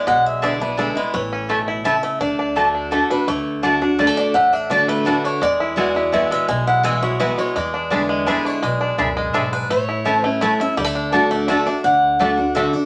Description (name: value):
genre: bluegrass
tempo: 168 BPM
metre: 3/4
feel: straight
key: D lydian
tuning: A4 = 436 Hz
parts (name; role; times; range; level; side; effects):
- bluegrass banjo; melody; 0.0-12.6 s; E3 to E4; -26 LUFS; equal; none
- picked swing-style acoustic guitar; melody; 0.0-12.9 s; A4 to G#5; -23 LUFS; equal; none
- picked steel-string acoustic guitar; accompaniment; 0.0-12.9 s; E2 to F#4; -25 LUFS; equal; none
- upright bass; bass; 0.1-12.6 s; A1 to E2; -34 LUFS; equal; none
- mandolin; stabs; 0.4-12.7 s; A3 to B5; -23 LUFS; equal; none
room: wet studio reverb, RT60 0.5 s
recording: none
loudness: -19 LUFS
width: mono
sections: 0.0-3.3 A section; 3.3-11.8 A section; 11.8-12.9 B section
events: none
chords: 0.0 E7; 1.1 A; 2.2 D; 5.4 Eadd9; 7.6 E7; 9.7 A; 10.8 D